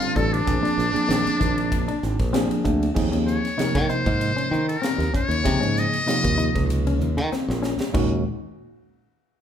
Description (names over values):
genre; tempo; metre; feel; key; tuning
electric jazz fusion; 96 BPM; 4/4; swing 53% on 16ths; unclear; A4 = 442 Hz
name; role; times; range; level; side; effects
trumpet with metal mute; melody; 0.0-6.7 s; D4 to Eb5; -26 LUFS; left 2 dB; none
concert flute; second line; 0.0-2.3 s; D4 to A4; -28 LUFS; right 3 dB; none
bell-like tine electric piano; accompaniment; 0.0-8.2 s; Bb2 to Bb4; -26 LUFS; right 2 dB; fast stereo tremolo
clean electric guitar; stabs; 0.0-8.1 s; D#3 to Eb4; -30 LUFS; left 5 dB; none
crisp fusion drum kit; drums; 0.0-8.1 s; crash cymbal, hi-hat, kick drum, ride cymbal, snare drum; -28 LUFS; equal; none
modern bright fingered electric bass; bass; 0.2-8.2 s; G#1 to Eb3; -25 LUFS; equal; none
room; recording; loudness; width
moderate large studio reverb, RT60 1.2 s; band playing live in one room; -20 LUFS; side -9 dB against mid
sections
0.0-3.0 A section; 3.0-7.9 B section; 7.9-9.4 C section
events
drum fill 7.3-7.9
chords
0.5 A#7; 3.0 Eb9sus4; 7.9 Ebm